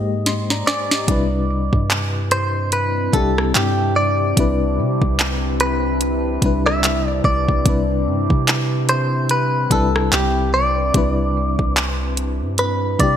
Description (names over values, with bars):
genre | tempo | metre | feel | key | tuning
contemporary R&B | 73 BPM | 4/4 | swing 58% on 16ths | C major | A4 = 439 Hz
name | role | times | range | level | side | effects
FM electric piano with tremolo | accompaniment | 0.0-13.2 s | Ab2 to C6 | -24 LUFS | left 4 dB | none
long sustained 808-style bass | bass | 0.0-13.2 s | C2 to C3 | -22 LUFS | right 1 dB | none
smooth R&B drum kit | drums | 0.3-13.2 s | handclaps, hi-hat, kick drum, rim click, snare drum | -19 LUFS | right 1 dB | none
direct-recorded clean electric guitar | melody | 0.7-13.2 s | G4 to E5 | -21 LUFS | equal | ping-pong delay
deep dark ambient pad | sustained chords | 2.1-13.2 s | C3 to E4 | -26 LUFS | equal | chorus, built-in reverb
room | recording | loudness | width
light reverb | bright 1980s-style digital production | -16 LUFS | side -9 dB against mid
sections
0.0-1.1 A section; 1.1-13.2 B section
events
drum fill 0.3-1.1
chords
0.0 Abmaj9; 1.1 Cmaj9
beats
0.26 | 1.08 1.90 2.73 3.55 | 4.37 5.19 6.01 6.83 | 7.66 8.48 9.30 10.12 | 10.94 11.77 12.59